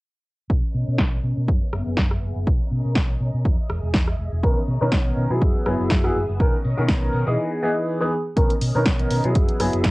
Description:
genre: filtered disco house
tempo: 122 BPM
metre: 4/4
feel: swing 55% on 16ths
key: B major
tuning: A4 = 441 Hz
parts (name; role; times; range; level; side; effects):
- phased string machine; sustained chords; 0.5-9.9 s; B3 to E5; -34 LUFS; left 1 dB; ensemble chorus, phaser, sidechain pumping, low-pass filter, cassette tape
- hollow-body short-scale fingered electric bass; bass; 0.5-9.9 s; E1 to B2; -24 LUFS; equal; sidechain pumping, low-pass filter
- electronic kick drum; drums; 0.5-9.9 s; none; -21 LUFS; equal; cassette tape
- punchy analog drum machine; drums; 1.0-9.9 s; hi-hat, rim click, snare drum; -24 LUFS; equal; low-pass filter on snare, cassette tape, sidechain pumping on hats, low-pass filter on hats
- bright concert grand piano; accompaniment; 4.4-9.9 s; D#3 to A#4; -23 LUFS; equal; phaser, sidechain pumping, low-pass filter, cassette tape
- tambourine; percussion; 4.4-9.9 s; none; -63 LUFS; left 2 dB; none
room: light reverb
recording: home recording on cassette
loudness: -19 LUFS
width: side -22 dB against mid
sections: 0.5-8.4 A section; 8.4-9.9 B section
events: filter sweep 0.5-8.4, 8.4-9.9; break 7.4-8.4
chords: 0.5 Bmaj9; 1.5 F#9sus4; 2.5 Bmaj9; 3.5 Emaj7; 4.4 Bmaj9; 5.4 F#9sus4; 6.4 Bmaj9; 7.4 Emaj7; 8.4 Bmaj9; 9.4 F#9sus4

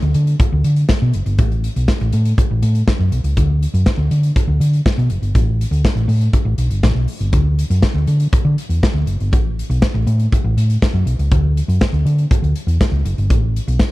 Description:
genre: disco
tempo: 121 BPM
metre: 4/4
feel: straight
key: unclear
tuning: A4 = 440 Hz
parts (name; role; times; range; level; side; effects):
- hollow-body short-scale fingered electric bass; bass; 0.0-13.8 s; F#1 to D3; -15 LUFS; equal; none
- modern studio drum kit; drums; 0.0-13.9 s; hi-hat, kick drum, snare drum; -18 LUFS; equal; none
room: little or no reverb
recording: none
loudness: -14 LUFS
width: side -18 dB against mid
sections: 0.0-13.9 A section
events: none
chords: none

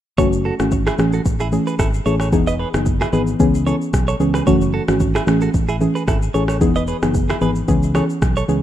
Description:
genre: afrobeats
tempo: 112 BPM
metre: 4/4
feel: swing 55% on 16ths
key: unclear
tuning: A4 = 441 Hz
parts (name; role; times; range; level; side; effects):
- soft round pluck; accompaniment; 0.2-8.6 s; E3 to G#4; -18 LUFS; left 1 dB; chorus
- direct-recorded clean electric guitar; riff; 0.2-8.4 s; E4 to D#5; -25 LUFS; right 5 dB; tremolo, ping-pong delay
- fingered electric bass; bass; 0.2-8.6 s; E1 to C#2; -21 LUFS; equal; none
- afro-pop drum kit; drums; 0.2-8.6 s; kick drum, rim click, shaker; -21 LUFS; equal; vintage 12-bit sampler grit
room: light reverb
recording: rough home demo mix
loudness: -15 LUFS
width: side -11 dB against mid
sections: 0.2-8.6 A section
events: none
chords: 0.2 F#m7; 1.0 Amaj7; 2.3 Emaj7; 3.4 C#m7; 4.5 F#m7; 5.3 Amaj7; 6.6 Emaj7; 7.7 C#m7

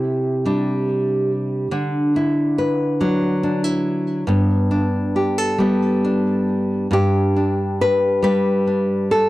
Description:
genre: folk, solo fingerstyle acoustic guitar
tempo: 46 BPM (dotted quarters)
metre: 6/8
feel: rubato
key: G major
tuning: A4 = 439 Hz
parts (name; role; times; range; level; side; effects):
- nylon-string guitar; solo; 0.0-9.3 s; G2 to B4; -17 LUFS; equal; tape echo
room: light reverb, studio reverb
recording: dry, gritty hardware recording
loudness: -17 LUFS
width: side -17 dB against mid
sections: 0.0-6.9 A section; 6.9-9.3 A section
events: none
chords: 0.0 Cadd9; 1.7 Dadd9; 4.3 Gadd9

